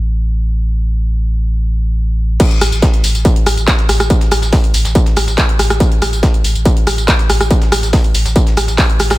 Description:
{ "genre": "driving peak-time techno", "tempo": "141 BPM", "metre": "4/4", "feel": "straight", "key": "unclear", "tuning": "A4 = 443 Hz", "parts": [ { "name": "saturated sub bass", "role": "bass", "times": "0.0-9.2 s", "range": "A1", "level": "-15 LUFS", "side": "equal", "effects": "tube saturation, sidechain pumping, low-pass filter" }, { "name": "breakbeat sampler-style drum kit", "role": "drums", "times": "2.4-9.2 s", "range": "hi-hat, snare drum", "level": "-28 LUFS", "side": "left 1 dB", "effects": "none" }, { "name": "electronic kick drum", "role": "drums", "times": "2.4-8.9 s", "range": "none", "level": "-12 LUFS", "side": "equal", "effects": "distortion" }, { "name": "techno drum kit", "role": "drums", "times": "2.4-9.2 s", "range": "crash cymbal, handclaps, hi-hat, rim click, tambourine", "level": "-16 LUFS", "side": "equal", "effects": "none" } ], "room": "little or no reverb", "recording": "none", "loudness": "-11 LUFS", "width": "side -18 dB against mid", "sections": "0.0-2.4 A section; 2.4-9.2 B section", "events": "drop 2.4-9.2", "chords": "none" }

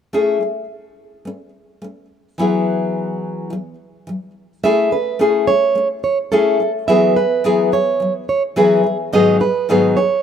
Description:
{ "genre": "pop", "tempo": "107 BPM", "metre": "4/4", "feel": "straight", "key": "unclear", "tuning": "A4 = 440 Hz", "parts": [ { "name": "nylon-string guitar", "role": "accompaniment", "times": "0.1-10.2 s", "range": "G#2 to G#4", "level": "-16 LUFS", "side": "left 3 dB", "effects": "none" }, { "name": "fingerpicked plugged-in steel-string acoustic guitar", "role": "arpeggios", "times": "4.6-10.2 s", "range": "G#4 to E5", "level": "-17 LUFS", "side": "right 5 dB", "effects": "none" } ], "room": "light reverb", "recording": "rough home demo mix", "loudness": "-14 LUFS", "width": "side -8 dB against mid", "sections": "0.1-4.6 A section; 4.6-10.2 B section", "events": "none", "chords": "0.1 Amaj7; 2.4 Eadd9; 4.6 Amaj7; 6.9 Eadd9; 9.1 G#m7" }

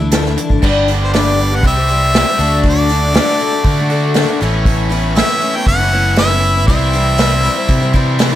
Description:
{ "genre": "folk rock and heartland rock", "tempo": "119 BPM", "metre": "4/4", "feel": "straight", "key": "unclear", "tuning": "A4 = 439 Hz", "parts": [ { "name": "clear harmonica", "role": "melody", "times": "0.0-8.2 s", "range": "C5 to G5", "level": "-17 LUFS", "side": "equal", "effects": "none" }, { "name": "picked twelve-string acoustic guitar", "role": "accompaniment", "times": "0.0-8.4 s", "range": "G2 to G4", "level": "-19 LUFS", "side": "left 5 dB", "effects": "none" }, { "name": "overdriven electric guitar", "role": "riff", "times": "0.0-8.4 s", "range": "G2 to G4", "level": "-20 LUFS", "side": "right 2 dB", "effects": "none" }, { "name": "fingered electric bass", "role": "bass", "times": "0.0-8.4 s", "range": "F#1 to D3", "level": "-16 LUFS", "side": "equal", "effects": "none" }, { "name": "unplugged drum kit", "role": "drums", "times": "0.1-8.3 s", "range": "crash cymbal, hi-hat, kick drum, snare drum", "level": "-17 LUFS", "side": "right 1 dB", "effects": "none" } ], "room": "small room ambience", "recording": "none", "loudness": "-11 LUFS", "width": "side -12 dB against mid", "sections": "0.6-8.4 A section", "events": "none", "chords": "0.0 Dsus2; 0.6 G; 1.6 C; 2.4 D; 4.4 Aadd9; 6.7 C" }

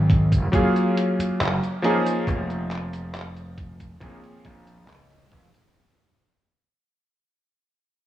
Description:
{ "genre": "vaporwave", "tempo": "69 BPM", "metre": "4/4", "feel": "straight", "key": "unclear", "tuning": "A4 = 440 Hz", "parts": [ { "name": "bright electric grand piano", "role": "accompaniment", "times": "0.0-5.8 s", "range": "F3 to Ab4", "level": "-23 LUFS", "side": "equal", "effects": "analog chorus, analog delay" }, { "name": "gritty slap bass", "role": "bass", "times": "0.0-5.5 s", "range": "F1 to Db2", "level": "-24 LUFS", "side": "equal", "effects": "overdrive" }, { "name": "detuned 8-bit digital drum machine", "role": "drums", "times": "0.1-5.7 s", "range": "cabasa, handclaps, hi-hat", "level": "-32 LUFS", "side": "equal", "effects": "none" }, { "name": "electronic kick drum", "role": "drums", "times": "0.1-5.5 s", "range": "none", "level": "-22 LUFS", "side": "equal", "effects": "none" } ], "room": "light reverb", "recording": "cassette tape, small room ambience", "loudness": "-20 LUFS", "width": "side -13 dB against mid", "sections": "0.0-5.8 A section", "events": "fade-out 0.0-5.8", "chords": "0.0 Ab9; 0.5 Gbmaj9; 1.8 Db69/F; 4.0 Bbm9" }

